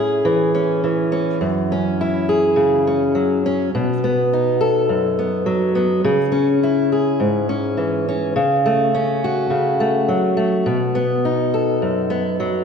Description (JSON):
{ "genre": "folk", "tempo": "104 BPM", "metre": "4/4", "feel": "straight", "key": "unclear", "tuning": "A4 = 441 Hz", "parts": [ { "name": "fingerpicked steel-string acoustic guitar", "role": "solo", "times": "0.0-12.6 s", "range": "F#2 to A4", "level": "-16 LUFS", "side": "equal", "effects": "none" } ], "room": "wet scoring stage reverb, RT60 2.1 s", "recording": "recorded in a church or concert hall", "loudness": "-16 LUFS", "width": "side -6 dB against mid", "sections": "0.0-12.6 A section", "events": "none", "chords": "0.0 A; 1.4 F#5; 3.7 B; 6.0 C#m; 8.4 F#m/C#; 10.7 B", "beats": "0.27 0.84 | 1.42 1.99 2.57 3.15 | 3.72 4.30 4.88 5.46 | 6.04 6.62 7.20 7.78 | 8.35 8.93 9.51 10.09 | 10.67 11.25 11.83 12.40" }